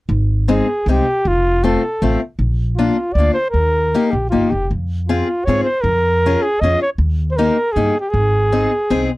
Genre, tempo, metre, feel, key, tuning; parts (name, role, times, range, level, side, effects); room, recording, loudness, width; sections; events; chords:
alpine folk; 156 BPM; 3/4; straight; Ab major; A4 = 440 Hz
upright bass; bass; 0.1-9.0 s; F1 to Ab2; -18 LUFS; equal
warm flugelhorn; melody; 0.5-9.1 s; F4 to Eb5; -18 LUFS; equal
picked acoustic archtop guitar; accompaniment; 0.5-9.1 s; Ab3 to Ab4; -18 LUFS; left 3 dB
little or no reverb; dry, close 1970s-style studio recording; -14 LUFS; side -19 dB against mid
0.1-9.2 A section
0.1 Ab; 1.3 F; 2.4 Bb; 3.5 Eb; 4.7 Fm; 5.9 Db/F; 7.0 Eb; 8.1 Ab